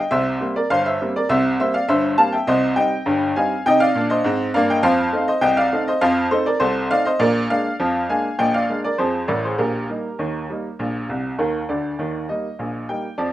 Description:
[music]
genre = ragtime piano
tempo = 101 BPM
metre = 2/4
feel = straight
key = Eb major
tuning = A4 = 440 Hz
[part]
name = bright upright piano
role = solo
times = 0.0-13.3 s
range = G1 to A5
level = -18 LUFS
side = equal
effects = none
[sound]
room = light reverb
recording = none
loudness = -18 LUFS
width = side -14 dB against mid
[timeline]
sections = 0.0-12.0 A section; 12.0-13.3 B section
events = upright piano fill 11.1-12.0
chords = 0.1 C7; 2.5 Cm; 4.8 F7; 7.2 Bb7; 9.6 Eb/Bb; 10.8 Bb; 12.0 Eb

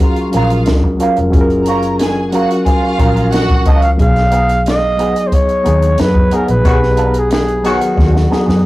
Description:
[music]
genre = lush 1970s-style soul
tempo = 90 BPM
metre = 4/4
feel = straight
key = F# major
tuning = A4 = 439 Hz
[part]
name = warm studio violin section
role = second line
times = 0.0-3.8 s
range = E#4 to A#5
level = -21 LUFS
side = right 2 dB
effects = none
[part]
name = mellow reed electric piano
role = accompaniment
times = 0.0-8.7 s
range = F#3 to A#4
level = -16 LUFS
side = left 1 dB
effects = fast tremolo
[part]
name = electric guitar through a small old amp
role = riff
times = 0.0-8.7 s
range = B3 to C#5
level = -21 LUFS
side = right 3 dB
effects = wah
[part]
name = compact cocktail drum kit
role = drums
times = 0.0-8.6 s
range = hi-hat, kick drum, snare drum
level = -15 LUFS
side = equal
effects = none
[part]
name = worn celesta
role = texture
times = 0.0-8.7 s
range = F#5 to D#6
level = -27 LUFS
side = left 1 dB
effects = none
[part]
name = vintage muted fingered electric bass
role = bass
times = 0.3-8.7 s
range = E#1 to F#2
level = -15 LUFS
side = equal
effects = none
[part]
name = warm flugelhorn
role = melody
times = 3.7-8.6 s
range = F#4 to E#5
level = -16 LUFS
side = equal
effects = tape echo
[part]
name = mellow horn section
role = stabs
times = 6.6-8.1 s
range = D#3 to F#4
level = -18 LUFS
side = left 2 dB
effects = none
[sound]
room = moderate small room reverb, RT60 0.6 s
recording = rough rehearsal-room recording, warm saturation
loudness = -10 LUFS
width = side -17 dB against mid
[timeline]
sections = 0.0-8.7 A section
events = band accent 6.6-8.7; drum fill 8.0-8.7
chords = 0.0 F#maj7; 4.0 B6

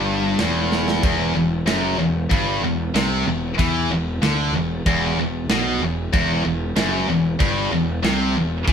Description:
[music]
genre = heavy metal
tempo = 94 BPM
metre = 4/4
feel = straight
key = E minor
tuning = A4 = 440 Hz
[part]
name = heavy high-gain guitar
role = riff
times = 0.0-8.7 s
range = E2 to E3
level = -20 LUFS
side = equal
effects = distortion
[part]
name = fuzz picked electric bass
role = bass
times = 0.0-8.7 s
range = E1 to E2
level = -25 LUFS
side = equal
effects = overdrive
[part]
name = tight metal drum kit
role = drums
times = 0.4-8.7 s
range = crash cymbal, kick drum, snare drum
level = -25 LUFS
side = right 1 dB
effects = none
[sound]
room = moderate studio reverb, RT60 0.8 s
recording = band playing live in one room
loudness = -18 LUFS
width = side -7 dB against mid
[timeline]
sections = 0.0-8.7 A section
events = drum fill 0.7-1.0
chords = 0.0 Em

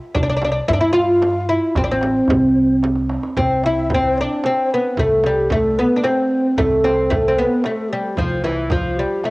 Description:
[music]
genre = Persian modal ensemble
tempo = 112 BPM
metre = 3/4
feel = straight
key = C dastgah mahur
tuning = A4 = 440 Hz
[part]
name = oud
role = melody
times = 0.1-9.3 s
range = E3 to F4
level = -16 LUFS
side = equal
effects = cassette tape
[part]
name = breathy low ney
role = second line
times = 0.1-9.3 s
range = E4 to G5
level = -29 LUFS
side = left 1 dB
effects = cassette tape
[part]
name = frame drum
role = percussion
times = 0.1-9.3 s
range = none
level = -27 LUFS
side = right 2 dB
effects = none
[part]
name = upright bass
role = bass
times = 0.2-9.0 s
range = A1 to G2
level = -24 LUFS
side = equal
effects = none
[part]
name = tombak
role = percussion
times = 0.2-9.3 s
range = none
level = -26 LUFS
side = equal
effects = none
[sound]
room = little or no reverb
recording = home recording on cassette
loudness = -15 LUFS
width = side -22 dB against mid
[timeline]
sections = 0.0-3.4 A section; 3.4-9.3 B section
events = drum fill 2.8-3.4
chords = none

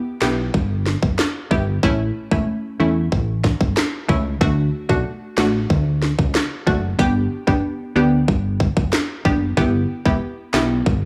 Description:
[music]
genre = dancehall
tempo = 93 BPM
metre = 4/4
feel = straight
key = D major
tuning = A4 = 439 Hz
[part]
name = analog pluck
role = accompaniment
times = 0.0-10.8 s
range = A3 to G4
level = -23 LUFS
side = equal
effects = chorus, sidechain pumping
[part]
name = woody fretless electric bass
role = bass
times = 0.2-11.1 s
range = E1 to E2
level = -24 LUFS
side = equal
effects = none
[part]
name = island pop drum kit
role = drums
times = 0.2-11.0 s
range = handclaps, kick drum, rim click, snare drum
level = -22 LUFS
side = equal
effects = none
[sound]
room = light reverb, digital ambience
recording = studio ambience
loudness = -20 LUFS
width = mono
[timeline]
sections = 0.0-11.1 A section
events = break 0.0-4.4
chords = 0.0 Em; 1.8 A; 4.4 D; 7.0 G; 9.6 Em

